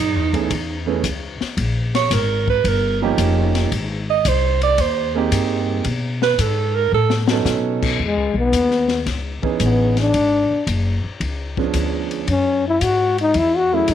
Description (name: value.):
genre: jazz, small-group swing and bop.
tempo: 112 BPM.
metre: 4/4.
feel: swing 69% on 8ths.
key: unclear.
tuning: A4 = 440 Hz.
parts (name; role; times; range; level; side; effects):
breathy alto saxophone; second line; 0.0-7.2 s; D#4 to D#5; -19 LUFS; right 9 dB; none.
upright bass; bass; 0.0-13.9 s; E#1 to B2; -21 LUFS; left 1 dB; none.
warm concert grand piano; accompaniment; 0.3-13.9 s; E3 to A4; -22 LUFS; right 9 dB; none.
open jazz drum kit; drums; 0.3-13.9 s; crash cymbal, hi-hat, kick drum, ride cymbal, snare drum; -26 LUFS; left 6 dB; none.
breathy trombone; melody; 8.0-13.9 s; G#3 to F#4; -17 LUFS; left 3 dB; none.
room: light reverb, small room ambience.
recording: 1960s-style stereo with parts hard left and right.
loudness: -16 LUFS.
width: side -10 dB against mid.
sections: 0.0-8.0 A section; 8.0-13.9 B section.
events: alto saxophone solo 0.0-8.0; drum fill 6.9-7.5.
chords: 0.0 Amaj9; 1.6 G#sus2; 2.6 D#9; 3.7 G#maj7; 5.9 B7; 8.0 C#m9; 10.1 F#sus2; 11.2 C#7b9; 12.3 F#m9.